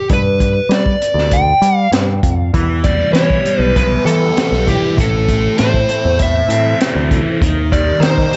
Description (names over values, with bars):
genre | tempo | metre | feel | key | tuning
psychedelic rock | 98 BPM | 4/4 | straight | unclear | A4 = 440 Hz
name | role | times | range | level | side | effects
fuzz lead guitar | melody | 0.0-8.4 s | G4 to G5 | -19 LUFS | equal | distortion, analog delay
picked electric bass | bass | 0.1-8.3 s | A1 to G3 | -19 LUFS | equal | none
crunchy breakbeat drum kit | drums | 0.1-8.4 s | hi-hat, kick drum, snare drum | -20 LUFS | equal | none
phased string machine | sustained chords | 2.5-8.4 s | E3 to Bb4 | -28 LUFS | equal | ensemble chorus, phaser
overdriven electric guitar | riff | 2.5-8.4 s | A2 to E4 | -21 LUFS | equal | phaser
room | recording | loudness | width
light reverb | nothing above 8.0 kHz | -14 LUFS | mono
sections
0.0-8.4 A section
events
none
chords
0.1 G; 2.5 Em; 5.0 Am; 7.4 Eb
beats
| 0.10 0.71 1.32 1.93 | 2.54 3.15 3.76 4.37 | 4.98 5.59 6.20 6.81 | 7.42 8.03